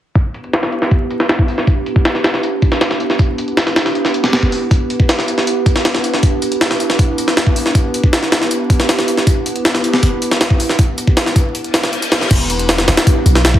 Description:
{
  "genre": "drum and bass, jungle",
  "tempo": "158 BPM",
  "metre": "4/4",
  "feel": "straight",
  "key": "E minor",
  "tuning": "A4 = 439 Hz",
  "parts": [
    { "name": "warbly tape-like pad", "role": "sustained chords", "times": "0.2-13.4 s", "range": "B3 to B4", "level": "-20 LUFS", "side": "right 1 dB", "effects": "chorus, built-in reverb" },
    { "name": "jungle sampler-style drum kit", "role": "drums", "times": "0.2-13.6 s", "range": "crash cymbal, hi-hat, kick drum, snare drum", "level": "-13 LUFS", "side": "equal", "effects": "low-pass filter on hats, low-pass filter on kick, low-pass filter on snare, low-pass filter on cymbals, low-pass filter on room" },
    { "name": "reverse cymbal", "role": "sound effects", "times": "11.7-12.3 s", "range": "none", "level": "-24 LUFS", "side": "left 4 dB", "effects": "none" },
    { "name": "long sustained 808-style bass", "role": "bass", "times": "12.3-13.6 s", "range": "E1 to B1", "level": "-14 LUFS", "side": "equal", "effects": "none" }
  ],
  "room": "light reverb",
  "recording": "heavily compressed radio sound, vinyl crackle",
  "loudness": "-12 LUFS",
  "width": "side -12 dB against mid",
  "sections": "0.2-12.3 A section; 12.3-13.6 B section",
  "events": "filter sweep on drum 0.2-12.3; break 11.5-12.3; reverse cymbal 11.7-12.3; drop 12.3-13.6",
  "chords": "0.2 Em7",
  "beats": "| 0.15 0.54 0.92 1.29 | 1.67 2.05 2.43 2.81 | 3.19 3.57 3.95 4.33 | 4.71 5.09 5.47 5.85 | 6.23 6.61 6.99 7.37 | 7.75 8.13 8.51 8.89 | 9.27 9.65 10.03 10.41 | 10.79 11.17 11.55 11.93 | 12.31 12.69 13.07 13.45"
}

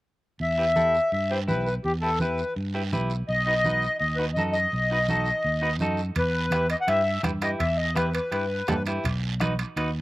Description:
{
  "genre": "latin, cumbia",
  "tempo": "167 BPM",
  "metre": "4/4",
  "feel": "straight",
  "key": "E harmonic minor",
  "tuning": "A4 = 440 Hz",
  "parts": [
    { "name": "accordion", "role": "melody", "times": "0.4-8.8 s", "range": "G4 to F#5", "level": "-24 LUFS", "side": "left 1 dB", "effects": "none" },
    { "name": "fingered electric bass", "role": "bass", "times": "0.4-10.0 s", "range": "B1 to G2", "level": "-28 LUFS", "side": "equal", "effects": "none" },
    { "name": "congas", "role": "percussion", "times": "0.4-9.9 s", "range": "none", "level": "-33 LUFS", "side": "right 2 dB", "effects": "none" },
    { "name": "guiro", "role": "percussion", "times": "0.4-10.0 s", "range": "none", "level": "-40 LUFS", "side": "right 7 dB", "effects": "none" },
    { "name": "semi-hollow electric guitar", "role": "accompaniment", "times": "0.6-9.9 s", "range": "D#4 to B4", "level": "-31 LUFS", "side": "right 1 dB", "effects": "slapback echo" },
    { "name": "bombo", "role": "percussion", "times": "6.2-9.6 s", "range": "none", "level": "-32 LUFS", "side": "left 1 dB", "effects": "none" },
    { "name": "timbales", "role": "percussion", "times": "6.2-9.9 s", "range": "none", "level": "-34 LUFS", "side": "right 4 dB", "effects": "none" }
  ],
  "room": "little or no reverb",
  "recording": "recorded outdoors, with no room sound",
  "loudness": "-23 LUFS",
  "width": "side -18 dB against mid",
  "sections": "0.4-6.2 A section; 6.2-10.0 B section",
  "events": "none",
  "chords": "0.4 Em; 3.3 B7; 6.2 Em; 9.0 B",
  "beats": "| 0.41 0.77 1.13 1.49 | 1.85 2.21 2.57 2.93 | 3.29 3.65 4.01 4.37 | 4.73 5.09 5.45 5.81 | 6.17 6.53 6.89 7.25 | 7.61 7.96 8.32 8.68 | 9.04 9.40 9.76"
}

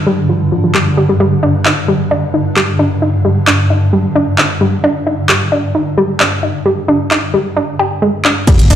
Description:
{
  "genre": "driving peak-time techno",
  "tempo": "132 BPM",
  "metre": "4/4",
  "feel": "straight",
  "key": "unclear",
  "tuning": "A4 = 440 Hz",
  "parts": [
    { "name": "swarming drone", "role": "drone", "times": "0.0-7.6 s", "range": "G2 to D3", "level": "-15 LUFS", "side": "equal", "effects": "built-in reverb, sidechain pumping" },
    { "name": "analog pluck", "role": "riff", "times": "0.1-8.7 s", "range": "F3 to G4", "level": "-14 LUFS", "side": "equal", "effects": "chorus, tube saturation, sidechain pumping, ping-pong delay" },
    { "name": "techno drum kit", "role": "drums", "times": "0.7-8.8 s", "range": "crash cymbal, handclaps, hi-hat, ride cymbal, shaker", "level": "-14 LUFS", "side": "equal", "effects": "none" },
    { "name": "electronic kick drum", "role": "drums", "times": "8.5-8.8 s", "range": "none", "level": "-8 LUFS", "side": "equal", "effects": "none" },
    { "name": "impact", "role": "sound effects", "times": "8.5-8.8 s", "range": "none", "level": "-15 LUFS", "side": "equal", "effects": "none" },
    { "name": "saturated sub bass", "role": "bass", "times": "8.6-8.8 s", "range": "G1", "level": "-9 LUFS", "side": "equal", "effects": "sidechain pumping, low-pass filter" }
  ],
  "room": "wet stone room reverb, RT60 0.9 s",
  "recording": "played on a big sound system in a bare room, stone room reverb",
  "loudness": "-10 LUFS",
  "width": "side -10 dB against mid",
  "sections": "0.0-8.5 A section",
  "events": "filter sweep on synth arpeggio sound 0.0-8.5; drum fill 8.2; impact 8.5",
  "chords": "0.0 G5",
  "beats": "0.29 0.75 | 1.20 1.66 2.11 2.56 | 3.02 3.47 3.93 4.38 | 4.84 5.29 5.75 6.20 | 6.66 7.11 7.57 8.02 | 8.47"
}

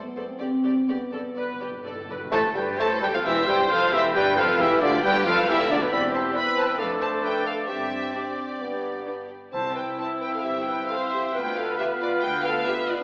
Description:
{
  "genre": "quick classical-period movement for symphony orchestra",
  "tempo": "124-139 BPM",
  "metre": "4/4",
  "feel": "rubato",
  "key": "C major",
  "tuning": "A4 = 440 Hz",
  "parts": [
    { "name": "dark French horn section", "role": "sustained chords", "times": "0.0-13.0 s", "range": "B2 to F4", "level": "-30 LUFS", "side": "equal", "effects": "none" },
    { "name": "rich chamber violin section", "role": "second line", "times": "0.1-12.7 s", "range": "A3 to D5", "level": "-32 LUFS", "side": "equal", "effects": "none" },
    { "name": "rich studio double bass section", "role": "bass", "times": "0.1-12.6 s", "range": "E1 to D2", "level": "-42 LUFS", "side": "equal", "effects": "none" },
    { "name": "rich chamber violin section", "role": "melody", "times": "0.2-13.0 s", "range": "B4 to B5", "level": "-29 LUFS", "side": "equal", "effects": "none" },
    { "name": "warm studio viola section", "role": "accompaniment", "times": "0.2-13.0 s", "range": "E4 to C5", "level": "-30 LUFS", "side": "equal", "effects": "none" },
    { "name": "rich chamber cello section", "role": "bass", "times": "0.2-12.6 s", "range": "C2 to B2", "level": "-34 LUFS", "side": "equal", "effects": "none" },
    { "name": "timpani", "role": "percussion", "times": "0.4-2.3, 9.5-10.2 s", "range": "G2 to C3", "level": "-45 LUFS", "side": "equal", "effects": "none" },
    { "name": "concert flute", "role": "second line", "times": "2.3-13.0 s", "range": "D4 to D5", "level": "-30 LUFS", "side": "equal", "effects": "none" },
    { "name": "warm oboe", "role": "second line", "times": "2.3-13.0 s", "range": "B4 to A5", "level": "-28 LUFS", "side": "equal", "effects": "none" },
    { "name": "mellow bassoon", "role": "accompaniment", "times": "2.3-13.0 s", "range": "B2 to C4", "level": "-29 LUFS", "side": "equal", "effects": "none" }
  ],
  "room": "wet recital hall reverb, RT60 1.6 s",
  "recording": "recorded in a church or concert hall, AM radio sound",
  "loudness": "-21 LUFS",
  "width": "side -30 dB against mid",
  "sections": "0.0-2.3 A section; 2.3-13.0 B section",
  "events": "timpani fill 0.4-2.3",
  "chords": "0.4 G; 2.3 C; 4.1 G7; 5.9 C/E; 6.8 Dm/F; 7.7 Gsus4; 8.6 G; 9.5 C; 11.3 Dm6",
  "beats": "| 0.40 0.88 1.36 1.84 | 2.32 2.79 3.24 3.70 | 4.15 4.60 5.04 5.48 | 5.92 6.36 6.79 7.24 | 7.69 8.15 8.61 9.07 | 9.53 9.99 10.44 10.89 | 11.34 11.79 12.23 12.67"
}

